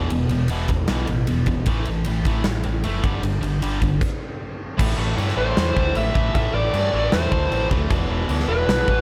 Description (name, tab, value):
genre	hard rock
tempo	154 BPM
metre	4/4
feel	straight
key	A minor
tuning	A4 = 440 Hz
part	high-gain distorted guitar	riff	0.0-9.0 s	E2 to A3	-27 LUFS	equal	distortion
part	overdriven fingered electric bass	bass	0.0-9.0 s	E1 to G2	-27 LUFS	equal	none
part	huge arena drum kit	drums	0.1-9.0 s	crash cymbal, kick drum, ride cymbal, snare drum	-26 LUFS	equal	none
part	dark smooth lead guitar	melody	5.4-9.0 s	B4 to E5	-26 LUFS	equal	overdrive
room	small room reverb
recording	none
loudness	-21 LUFS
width	mono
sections	0.0-4.8 A section; 4.8-9.0 B section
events	stop 4.0-4.8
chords	0.0 E5; 1.7 A5; 3.0 G5; 4.8 Am; 7.9 E5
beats	| 0.11 0.50 0.89 1.28 | 1.67 2.06 2.45 2.84 | 3.23 3.62 4.01 4.40 | 4.79 5.18 5.57 5.96 | 6.34 6.73 7.12 7.51 | 7.90 8.29 8.68